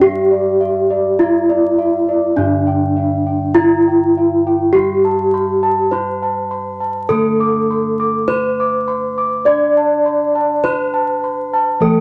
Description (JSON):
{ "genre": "gamelan", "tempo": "51 BPM", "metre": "4/4", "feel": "straight", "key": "D slendro", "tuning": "A4 = 440 Hz", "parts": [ { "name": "gamelan-type bronze metallophone", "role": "melody", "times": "0.0-12.0 s", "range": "D4 to D5", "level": "-17 LUFS", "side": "equal", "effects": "none" }, { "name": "gamelan-type bronze metallophone", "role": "accompaniment", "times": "0.0-12.0 s", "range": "D3 to D4", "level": "-27 LUFS", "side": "equal", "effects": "none" }, { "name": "gamelan-type bossed gongs", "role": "arpeggios", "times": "0.0-12.0 s", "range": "D5 to D6", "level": "-22 LUFS", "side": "equal", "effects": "none" }, { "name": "gamelan-type bossed gongs", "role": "bass", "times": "0.0-12.0 s", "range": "G2-20c to D5", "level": "-25 LUFS", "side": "equal", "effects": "none" } ], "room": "wet club reverb, RT60 0.7 s", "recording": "vinyl crackle", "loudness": "-16 LUFS", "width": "mono", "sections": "0.0-12.0 A section", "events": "none", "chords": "none" }